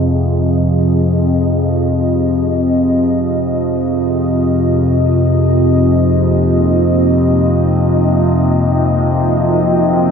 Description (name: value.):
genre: dark ambient drone.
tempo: free time.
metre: none.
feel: none.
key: F minor.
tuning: A4 = 440 Hz.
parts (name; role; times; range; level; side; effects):
dark analog pad; sustained chords; 0.0-10.1 s; Bb3 to Eb5; -17 LUFS; equal; chorus.
analog drone; drone; 0.0-10.1 s; F2 to C3; -13 LUFS; left 1 dB; chorus.
room: wet cathedral reverb, RT60 6.2 s.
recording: in a vast, echoing space.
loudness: -11 LUFS.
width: side -6 dB against mid.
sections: 0.0-10.1 A section.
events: none.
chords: 0.0 Fm7; 5.0 Ebm/F.